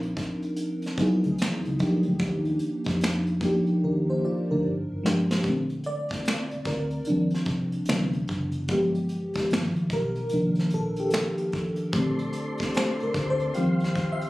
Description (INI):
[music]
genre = R&B, neo-soul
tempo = 74 BPM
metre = 4/4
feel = swing 64% on 16ths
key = Bb major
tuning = A4 = 440 Hz
[part]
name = FM electric piano with soft pad layer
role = accompaniment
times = 0.0-14.3 s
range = C3 to E5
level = -25 LUFS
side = equal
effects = chorus, tremolo
[part]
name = vintage muted fingered electric bass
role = bass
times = 0.0-14.2 s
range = F#1 to G2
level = -30 LUFS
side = equal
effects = none
[part]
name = vintage brush drum kit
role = drums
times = 0.0-14.3 s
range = finger snaps, hi-hat, kick drum, snare drum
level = -31 LUFS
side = equal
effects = none
[part]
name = tonewheel organ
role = sustained chords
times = 11.9-14.3 s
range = G3 to C5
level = -31 LUFS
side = equal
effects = slow rotary speaker
[sound]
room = moderate studio reverb, RT60 0.7 s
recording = recorded on a phone in the room, studio reverb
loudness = -24 LUFS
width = side -18 dB against mid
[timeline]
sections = 0.0-5.4 A section; 5.4-14.3 B section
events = drum fill 3.8-5.4; FM electric piano solo 5.4-14.3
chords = 0.0 Cm11; 1.4 Emaj9; 2.2 Ebmaj9; 4.6 G7b9; 5.4 Bbmaj9; 7.1 Eb69; 7.9 D13; 8.7 G7b9; 9.5 G7alt; 10.3 Cm11; 11.9 Bbmaj9; 13.6 Eb69